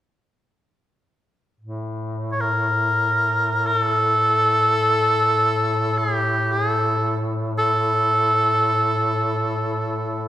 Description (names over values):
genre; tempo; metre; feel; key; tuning
caucasian folk, Caucasian lament; free time; none; none; unclear; A4 = 439 Hz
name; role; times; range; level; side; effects
clear duduk; drone; 1.6-10.3 s; A2; -25 LUFS; equal; none
warm oboe; melody; 2.3-10.3 s; G4 to C#5; -19 LUFS; equal; none
room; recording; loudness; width
wet scoring stage reverb, RT60 1.7 s; recorded in a church or concert hall; -18 LUFS; side -12 dB against mid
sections
1.6-10.3 A section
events
none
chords
none